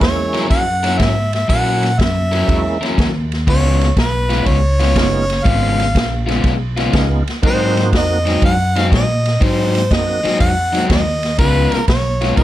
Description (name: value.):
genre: electric blues shuffle.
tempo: 121 BPM.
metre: 4/4.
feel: swing 68% on 8ths.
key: Db mixolydian.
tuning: A4 = 436 Hz.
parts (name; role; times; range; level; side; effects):
warm harmonica; melody; 0.0-12.4 s; Cb5 to Gb5; -19 LUFS; right 1 dB; plate reverb.
tonewheel organ; accompaniment; 0.0-12.4 s; Ab3 to Gb4; -23 LUFS; right 4 dB; slow rotary speaker, overdrive, chorus vibrato, plate reverb.
upright bass; bass; 0.0-12.4 s; Gb1 to Bb2; -18 LUFS; equal; none.
swinging big-band drum kit; drums; 0.0-12.4 s; kick drum, ride cymbal, snare drum; -18 LUFS; equal; none.
overdriven semi-hollow guitar; riff; 0.3-12.4 s; Ab2 to Bb4; -19 LUFS; left 3 dB; none.
room: light reverb.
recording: none.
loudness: -13 LUFS.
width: side -14 dB against mid.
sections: 0.0-12.4 A section.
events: none.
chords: 0.0 Gb7; 3.5 Db7; 7.4 Ab7; 11.4 Db7.